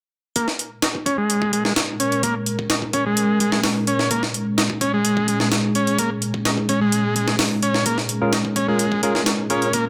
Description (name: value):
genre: breakbeat, breaks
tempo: 128 BPM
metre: 4/4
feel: straight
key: Bb minor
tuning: A4 = 440 Hz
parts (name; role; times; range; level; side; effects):
- deep dark ambient pad; sustained chords; 1.4-9.9 s; Bb2 to Bb4; -26 LUFS; equal; chorus, built-in reverb, sidechain pumping
- overdriven combo organ; riff; 0.4-9.9 s; Ab3 to Eb4; -24 LUFS; equal; low-pass filter, digital delay
- breakbeat sampler-style drum kit; drums; 0.4-9.8 s; hi-hat, kick drum, snare drum; -25 LUFS; equal; high-pass filter on hats, high-pass filter on kick, high-pass filter on snare
- barky tine electric piano; stabs; 8.2-9.7 s; Db4 to Bb4; -26 LUFS; equal; overdrive, digital delay
room: wet digital room reverb, RT60 0.9 s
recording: none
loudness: -20 LUFS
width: mono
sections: 0.4-9.9 A section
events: filter sweep on transistor combo organ 0.4-9.9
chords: 0.4 Bbm7